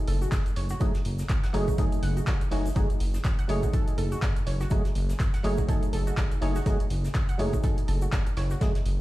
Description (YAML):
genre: deep house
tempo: 123 BPM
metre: 4/4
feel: swing 58% on 16ths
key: F# dorian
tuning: A4 = 440 Hz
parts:
  - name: percussive organ stab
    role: stabs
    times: 0.0-8.7 s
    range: F#3 to G#4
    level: -32 LUFS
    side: right 1 dB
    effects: analog chorus, dub echo
  - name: warbly dusty pluck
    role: arpeggios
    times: 0.1-8.7 s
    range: F#4 to F#5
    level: -40 LUFS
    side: right 3 dB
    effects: chorus, vintage 12-bit sampler grit, sidechain pumping, dub echo
  - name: smooth synth bass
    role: bass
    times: 0.1-9.0 s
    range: F#1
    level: -27 LUFS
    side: equal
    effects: tube saturation, sidechain pumping
  - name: punchy analog drum machine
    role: drums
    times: 0.1-9.0 s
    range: handclaps, hi-hat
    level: -38 LUFS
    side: equal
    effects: none
  - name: vintage brush drum kit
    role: drums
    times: 0.1-9.0 s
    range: hi-hat, snare drum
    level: -46 LUFS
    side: right 1 dB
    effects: high-pass filter on hats, high-pass filter on snare, high-pass filter on room
  - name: egg shaker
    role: percussion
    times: 0.2-8.8 s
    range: none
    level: -51 LUFS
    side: left 4 dB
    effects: none
  - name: electronic kick drum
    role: drums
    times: 0.3-8.7 s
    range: none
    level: -26 LUFS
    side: equal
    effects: none
room: little or no reverb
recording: played on a big sound system in a bare room, large studio reverb, vinyl crackle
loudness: -24 LUFS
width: side -17 dB against mid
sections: 0.0-9.0 A section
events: none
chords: 0.0 F#m69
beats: 0.32 | 0.81 1.29 1.78 2.27 | 2.76 3.25 3.73 4.22 | 4.71 5.20 5.68 6.17 | 6.66 7.15 7.64 8.12 | 8.61